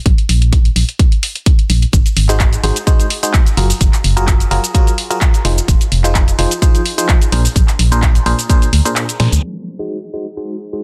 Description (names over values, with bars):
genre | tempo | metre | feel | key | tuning
piano house | 128 BPM | 4/4 | swing 54% on 16ths | Ab mixolydian | A4 = 440 Hz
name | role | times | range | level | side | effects
organ-like FM bass | bass | 0.1-9.4 s | F1 to Bb2 | -16 LUFS | equal | sidechain pumping
electronic kick drum | drums | 0.1-8.6 s | none | -14 LUFS | equal | none
house drum kit | drums | 0.1-9.4 s | cabasa, handclaps, hi-hat, snare drum | -22 LUFS | equal | none
barking FM electric piano | riff | 2.3-10.8 s | Bb2 to C5 | -22 LUFS | equal | chorus, phaser, tremolo, sidechain pumping, dub echo
room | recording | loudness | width
little or no reverb | dense, heavily limited modern master, low-pass filter | -13 LUFS | mono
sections
0.0-9.4 A section; 9.4-10.8 B section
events
break 9.0-9.4; drum fill 9.2; band accent 9.2; filter sweep 9.4-10.8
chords
0.0 N.C.; 1.9 Ab7; 3.6 Gbmaj9; 5.4 Fm7; 7.3 Bb9; 9.4 Ab7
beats
| 0.06 0.53 0.99 1.46 | 1.93 2.40 2.87 3.34 | 3.81 4.28 4.75 5.21 | 5.68 6.15 6.62 7.09 | 7.56 8.03 8.49 8.96 | 9.43 9.90 10.37